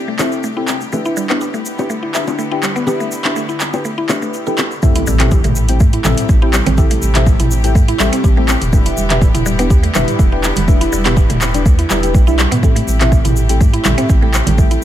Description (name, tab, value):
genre	afro house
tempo	123 BPM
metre	4/4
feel	straight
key	A minor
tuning	A4 = 440 Hz
part	clear studio string section	sustained chords	0.0-14.8 s	C3 to G4	-26 LUFS	left 1 dB	sidechain pumping
part	mallet-like synth pluck	arpeggios	0.0-14.8 s	G3 to A4	-21 LUFS	right 1 dB	chorus, sidechain pumping, tape echo
part	deep mellow chord stab	stabs	0.2-14.8 s	C4 to G5	-21 LUFS	left 3 dB	chorus, phaser, sidechain pumping, tape echo
part	deep house drum kit	drums	0.2-14.8 s	handclaps, hi-hat, shaker, toms	-19 LUFS	equal	overdrive
part	bongos	percussion	0.2-4.7 s	none	-23 LUFS	left 3 dB	none
part	electronic kick drum	drums	4.8-14.7 s	none	-12 LUFS	equal	overdrive
part	impact	sound effects	4.8-6.8 s	none	-23 LUFS	equal	none
part	congas	percussion	5.0-14.8 s	none	-23 LUFS	right 4 dB	none
part	warm sub bass	bass	5.1-14.8 s	E1 to A2	-16 LUFS	equal	sidechain pumping
room	little or no reverb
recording	none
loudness	-12 LUFS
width	side -12 dB against mid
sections	0.0-4.8 A section; 4.8-14.8 B section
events	drop 4.8-14.8; impact 4.8-6.8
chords	0.0 Am7; 0.9 Em7; 4.8 Am7; 8.7 Em7; 12.6 Am7